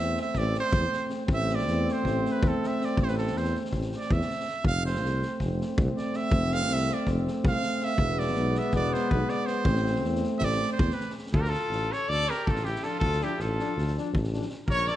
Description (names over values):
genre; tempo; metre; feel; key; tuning
balkan folk, Balkan brass band; 322 BPM (eighths); 9/8; straight; A harmonic minor, D harmonic minor from 11.3 s; A4 = 440 Hz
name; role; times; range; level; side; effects
bright trumpet; second line; 0.0-15.0 s; E4 to F5; -32 LUFS; right 4 dB; none
clear trombone; accompaniment; 0.0-14.5 s; B3 to D4; -32 LUFS; left 5 dB; none
dark euphonium; accompaniment; 0.0-14.5 s; F3 to A3; -33 LUFS; right 5 dB; none
mellow tuba; bass; 0.0-14.9 s; E1 to E2; -30 LUFS; equal; none
street-band drum kit; percussion; 0.2-14.9 s; kick drum, snare drum; -30 LUFS; equal; none
clear trumpet; melody; 11.3-15.0 s; G4 to D5; -29 LUFS; left 1 dB; none
room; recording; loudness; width
moderate recital hall reverb, RT60 1.7 s; nothing above 10.4 kHz; -25 LUFS; side -13 dB against mid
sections
0.0-11.3 A section; 11.3-15.0 B section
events
trumpet solo 0.0-11.3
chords
0.0 Am; 4.6 F; 8.0 E; 9.7 Am; 11.3 Dm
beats
0.17 0.36 0.55 0.73 0.92 1.10 | 1.29 1.48 1.66 1.85 2.04 2.22 2.41 2.59 2.78 | 2.97 3.15 3.34 3.52 3.71 3.90 4.08 4.27 4.46 | 4.64 4.83 5.01 5.20 5.39 5.57 5.76 5.94 6.13 | 6.32 6.50 6.69 6.87 7.06 7.25 7.43 7.62 7.80 | 7.99 8.18 8.36 8.55 8.73 8.92 9.10 9.29 9.47 | 9.66 9.85 10.03 10.22 10.40 10.59 10.78 10.96 11.15 | 11.33 11.52 11.71 11.89 12.08 12.26 12.45 12.64 12.82 | 13.01 13.20 13.38 13.57 13.75 13.94 14.13 14.31 14.50 | 14.69 14.87